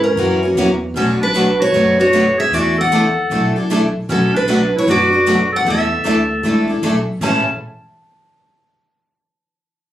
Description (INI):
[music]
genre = acoustic string swing (jazz manouche)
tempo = 154 BPM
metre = 4/4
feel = swing 63% on 8ths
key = A major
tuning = A4 = 440 Hz
[part]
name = picked steel-string acoustic guitar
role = melody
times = 0.0-7.4 s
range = A4 to A5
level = -18 LUFS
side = equal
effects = none
[part]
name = clear clarinet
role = second line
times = 0.0-7.4 s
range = C#4 to A4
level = -19 LUFS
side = equal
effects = none
[part]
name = upright bass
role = bass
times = 0.0-7.4 s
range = F#1 to G#2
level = -22 LUFS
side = equal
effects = none
[part]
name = picked steel-string acoustic guitar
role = accompaniment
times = 0.2-7.4 s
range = A2 to A4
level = -20 LUFS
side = left 2 dB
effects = none
[part]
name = picked steel-string acoustic guitar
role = accompaniment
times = 0.2-7.4 s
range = A2 to B4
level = -20 LUFS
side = right 2 dB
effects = none
[sound]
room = moderate studio reverb, RT60 0.6 s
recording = recorded on a phone in the room, studio reverb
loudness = -13 LUFS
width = side -12 dB against mid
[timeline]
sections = 1.0-7.2 A section; 7.2-8.8 B section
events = none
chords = 0.2 F#7; 1.0 Bm9; 2.5 E9sus4; 4.1 Bm7; 5.6 E7sus4; 7.2 Amaj7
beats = 0.18 0.57 | 0.96 1.35 1.74 2.13 | 2.52 2.91 3.30 3.69 | 4.08 4.47 4.86 5.25 | 5.64 6.04 6.43 6.82 | 7.21